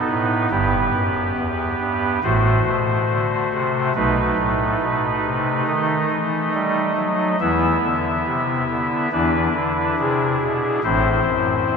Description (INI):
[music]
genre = classical, chorale-style piece for pipe organ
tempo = 70 BPM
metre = 4/4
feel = rubato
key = E minor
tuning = A4 = 438 Hz
[part]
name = pipe organ, soft reed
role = solo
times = 0.0-11.8 s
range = G1 to E5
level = -18 LUFS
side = equal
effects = none
[sound]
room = wet church reverb, RT60 3.0 s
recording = none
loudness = -18 LUFS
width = side -5 dB against mid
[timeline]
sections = 0.0-11.8 A section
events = none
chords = 0.0 B7; 0.5 Em/G; 2.3 F#dim/A; 4.0 B7; 7.4 E5; 10.8 Am